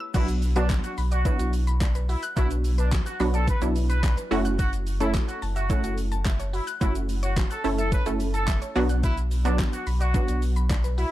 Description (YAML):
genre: dance-pop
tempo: 108 BPM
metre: 4/4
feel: straight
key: B minor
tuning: A4 = 440 Hz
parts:
  - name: mallet-like synth pluck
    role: arpeggios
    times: 0.0-11.1 s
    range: F#4 to F#6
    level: -36 LUFS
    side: left 2 dB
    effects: chorus, sidechain pumping, analog delay
  - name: warm horn section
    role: melody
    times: 0.1-11.1 s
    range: D4 to B4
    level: -33 LUFS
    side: equal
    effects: sidechain pumping, analog delay
  - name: wide unison pluck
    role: accompaniment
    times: 0.1-10.9 s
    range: F#3 to A4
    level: -29 LUFS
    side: right 2 dB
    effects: sidechain pumping
  - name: warm sub bass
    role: bass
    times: 0.1-11.0 s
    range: F#1 to B1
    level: -25 LUFS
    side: equal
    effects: sidechain pumping
  - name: pop drum kit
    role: drums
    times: 0.1-11.1 s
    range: crash cymbal, handclaps, hi-hat, kick drum, shaker, snare drum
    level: -27 LUFS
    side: equal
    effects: overdrive
  - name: egg shaker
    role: percussion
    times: 0.1-11.0 s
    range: none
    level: -51 LUFS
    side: left 4 dB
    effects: none
room: little or no reverb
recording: dry, gritty hardware recording, transformer saturation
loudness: -22 LUFS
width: side -15 dB against mid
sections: 0.1-11.1 A section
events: drop 0.1-11.1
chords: 0.1 Bm; 4.3 F#m7; 8.8 Bm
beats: | 0.14 0.70 1.26 1.81 | 2.37 2.92 3.48 4.03 | 4.59 5.14 5.70 6.26 | 6.81 7.37 7.92 8.48 | 9.03 9.59 10.14 10.70